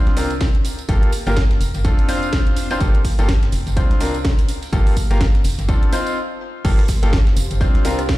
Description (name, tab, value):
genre	piano house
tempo	125 BPM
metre	4/4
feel	swing 59% on 16ths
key	G minor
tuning	A4 = 440 Hz
part	bright upright piano	riff	0.0-8.0 s	Bb3 to C5	-24 LUFS	left 1 dB	sidechain pumping, ping-pong delay
part	organ-like FM bass	bass	0.1-8.2 s	F1 to C2	-20 LUFS	equal	sidechain pumping
part	breakbeat sampler-style drum kit	drums	0.1-8.2 s	hi-hat, snare drum	-38 LUFS	right 2 dB	sidechain pumping on hats, high-pass filter on hats, high-pass filter on snare
part	house drum kit	drums	0.1-8.2 s	crash cymbal, hi-hat, rim click, snare drum	-29 LUFS	equal	overdrive
part	tambourine	percussion	0.2-8.2 s	none	-37 LUFS	right 9 dB	none
part	electronic kick drum	drums	0.4-8.2 s	none	-16 LUFS	equal	overdrive
part	granular cloud pad	texture	7.3-8.2 s	G4 to F5	-31 LUFS	right 1 dB	built-in reverb, sidechain pumping
room	digital ambience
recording	played on a big sound system in a bare room, large studio reverb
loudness	-15 LUFS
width	side -17 dB against mid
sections	0.0-6.6 A section; 6.6-8.2 B section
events	stop 6.2-6.6; drop 6.6-8.2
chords	0.0 C9sus4; 0.9 Gm9; 1.8 Dm7/F; 2.8 Gm9; 3.8 C9sus4; 4.7 Gm9; 5.7 Dm7; 6.2 N.C.; 6.6 Gm9; 7.6 C9sus4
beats	0.41 | 0.89 1.37 1.85 2.33 | 2.81 3.29 3.77 4.25 | 4.73 5.21 5.69 6.17 | 6.65 7.13 7.61 8.09